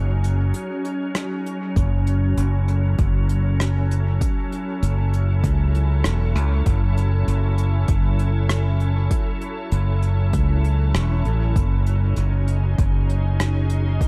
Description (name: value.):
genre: ambient dub.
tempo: 98 BPM.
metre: 4/4.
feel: straight.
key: F# dorian.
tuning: A4 = 444 Hz.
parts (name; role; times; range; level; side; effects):
soft additive organ-like pad; sustained chords; 0.0-14.1 s; F#3 to A4; -30 LUFS; equal; ensemble chorus, built-in reverb.
modern bright fingered electric bass; bass; 0.0-14.0 s; E1 to C#2; -21 LUFS; equal; none.
soft brush drum kit; drums; 0.2-14.1 s; hi-hat, rim click; -33 LUFS; equal; dub echo.
electronic kick drum; drums; 1.8-14.1 s; none; -25 LUFS; equal; overdrive.
room: studio reverb.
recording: dark, warm production.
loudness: -21 LUFS.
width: mono.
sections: 0.0-14.1 A section.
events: break 0.5-1.8.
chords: 0.0 C#sus2/F#; 1.8 F#m7; 11.6 C#sus2/F#.